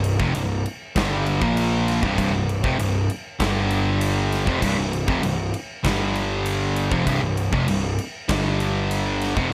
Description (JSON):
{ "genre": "stoner and doom metal", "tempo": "98 BPM", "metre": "4/4", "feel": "straight", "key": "unclear", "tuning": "A4 = 438 Hz", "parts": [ { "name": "distorted electric guitar", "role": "riff", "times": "0.0-9.5 s", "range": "C2 to Bb3", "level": "-29 LUFS", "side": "equal", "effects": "overdrive" }, { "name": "thick fuzz guitar", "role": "riff", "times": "0.0-9.5 s", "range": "C2 to Bb3", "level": "-29 LUFS", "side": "equal", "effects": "distortion" }, { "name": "thick fuzz guitar", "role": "riff", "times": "0.0-9.5 s", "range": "C2 to Bb3", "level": "-29 LUFS", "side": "equal", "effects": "distortion" }, { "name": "fuzz picked electric bass", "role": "bass", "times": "0.0-9.5 s", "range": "C1 to Bb1", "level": "-29 LUFS", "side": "equal", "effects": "overdrive" }, { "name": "big rock drum kit", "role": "drums", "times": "0.0-9.5 s", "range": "crash cymbal, kick drum, snare drum", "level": "-30 LUFS", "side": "equal", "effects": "none" } ], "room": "studio reverb", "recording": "none", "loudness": "-23 LUFS", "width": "mono", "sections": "0.0-9.5 A section", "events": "none", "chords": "0.0 C5; 1.4 Bb5; 2.0 C5; 3.4 G5; 4.5 C5; 5.9 G5; 6.9 C5; 8.3 G5" }